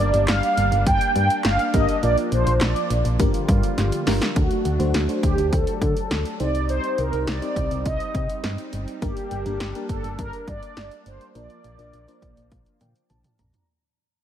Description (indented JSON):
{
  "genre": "synth-pop",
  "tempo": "103 BPM",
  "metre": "4/4",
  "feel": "straight",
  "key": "G minor",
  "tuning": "A4 = 441 Hz",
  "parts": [
    { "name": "mellow synth brass", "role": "melody", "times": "0.0-13.1 s", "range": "F#4 to G5", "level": "-25 LUFS", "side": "right 1 dB", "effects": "chorus" },
    { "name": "FM electric piano with soft pad layer", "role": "accompaniment", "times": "0.0-13.7 s", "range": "A3 to Bb5", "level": "-30 LUFS", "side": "left 1 dB", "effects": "chorus, tremolo" },
    { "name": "brassy analog pad", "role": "sustained chords", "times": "0.0-13.7 s", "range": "D3 to F4", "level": "-31 LUFS", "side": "equal", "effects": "chorus" },
    { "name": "solid FM bass", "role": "bass", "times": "0.0-13.5 s", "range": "G1 to D3", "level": "-24 LUFS", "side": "equal", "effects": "none" },
    { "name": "punchy analog drum machine", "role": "drums", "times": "0.1-13.7 s", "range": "handclaps, hi-hat, kick drum, snare drum, toms", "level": "-25 LUFS", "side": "equal", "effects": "none" }
  ],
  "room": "light reverb",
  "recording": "none",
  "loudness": "-20 LUFS",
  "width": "side -10 dB against mid",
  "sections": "0.0-4.4 A section; 4.4-13.7 B section",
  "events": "drum fill 3.8-4.4, 12.5-13.7; fade-out 4.4-13.7; FM electric piano fill 11.9-13.7",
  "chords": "0.0 Gm; 2.0 Bb; 3.2 Gm7; 4.4 D; 6.4 Cm; 9.0 Gm; 11.4 Bb"
}